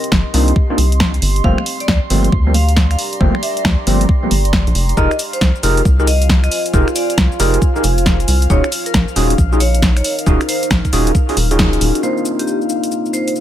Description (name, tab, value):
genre	UK garage, two-step garage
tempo	136 BPM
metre	4/4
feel	swing 64% on 16ths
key	C minor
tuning	A4 = 440 Hz
part	airy breathy pad	sustained chords	0.0-13.4 s	F5 to C6	-28 LUFS	left 2 dB	chorus, phaser, sidechain pumping
part	punchy analog drum machine	drums	0.0-13.4 s	finger snaps, hi-hat, shaker, snare drum	-19 LUFS	equal	overdrive
part	deep dark ambient pad	texture	0.0-13.4 s	C4 to Eb6	-25 LUFS	right 2 dB	chorus, built-in reverb, sidechain pumping
part	rubbery square bass	bass	0.1-11.9 s	Eb1 to D2	-15 LUFS	equal	tube saturation
part	electronic kick drum	drums	0.1-11.7 s	none	-16 LUFS	equal	overdrive
part	overdriven tine electric piano	stabs	0.3-13.4 s	F3 to Bb4	-19 LUFS	equal	wide subtle chorus, low-pass filter, digital delay
part	vibraphone with medium hard mallets	melody	1.4-13.3 s	G4 to F5	-24 LUFS	right 1 dB	digital delay
room	little or no reverb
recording	none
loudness	-12 LUFS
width	side -11 dB against mid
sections	0.0-12.0 A section; 12.0-13.4 B section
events	band accent 11.6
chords	0.0 Cm11; 1.4 Gm11; 5.0 Fm11; 8.5 Ebm11; 12.0 Cm11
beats	0.12 0.56 1.00 | 1.44 1.88 2.33 2.77 | 3.21 3.65 4.09 4.53 | 4.97 5.41 5.85 6.29 | 6.74 7.18 7.62 8.06 | 8.50 8.94 9.38 9.82 | 10.27 10.71 11.15 11.59 | 12.03 12.47 12.91 13.35